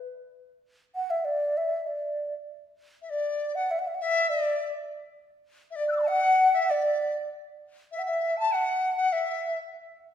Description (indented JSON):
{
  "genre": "chinese traditional, Chinese chamber ensemble",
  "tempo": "100 BPM",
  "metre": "2/4",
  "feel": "straight",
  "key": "D gong mode",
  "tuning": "A4 = 440 Hz",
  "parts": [
    { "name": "mellow hollow xiao", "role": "melody", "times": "1.0-9.6 s", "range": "D5 to A5", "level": "-25 LUFS", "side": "equal", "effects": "none" },
    { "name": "dizi", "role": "second line", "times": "3.0-9.6 s", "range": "D5 to F#6", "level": "-30 LUFS", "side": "left 4 dB", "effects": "none" }
  ],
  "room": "wet recital hall reverb, RT60 1.5 s",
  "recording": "minimal, uncompressed stereo recording",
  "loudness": "-24 LUFS",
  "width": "side -10 dB against mid",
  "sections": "0.0-2.5 A section; 2.5-10.1 B section",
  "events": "none",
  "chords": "none"
}